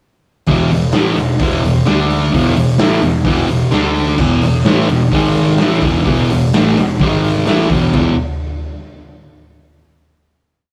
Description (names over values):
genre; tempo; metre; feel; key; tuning
garage rock duo or trio; 128 BPM; 4/4; straight; E mixolydian; A4 = 443 Hz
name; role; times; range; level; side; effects
fuzz guitar; riff; 0.5-8.1 s; E2 to D4; -15 LUFS; equal; distortion
hollow-body short-scale picked electric bass; bass; 0.5-8.2 s; E1 to D2; -26 LUFS; equal; none
raw garage drum kit; drums; 0.5-8.0 s; crash cymbal, hi-hat, kick drum, snare drum, toms; -20 LUFS; equal; none
room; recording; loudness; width
moderate studio reverb, RT60 0.7 s; rough rehearsal-room recording, tube saturation; -14 LUFS; mono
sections
0.5-7.9 riff; 7.9-9.8 final chord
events
none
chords
0.5 E5; 1.9 D5; 2.3 E5; 3.7 D5; 4.2 E5; 5.1 G#5; 5.6 E5; 7.0 G#5; 7.5 E5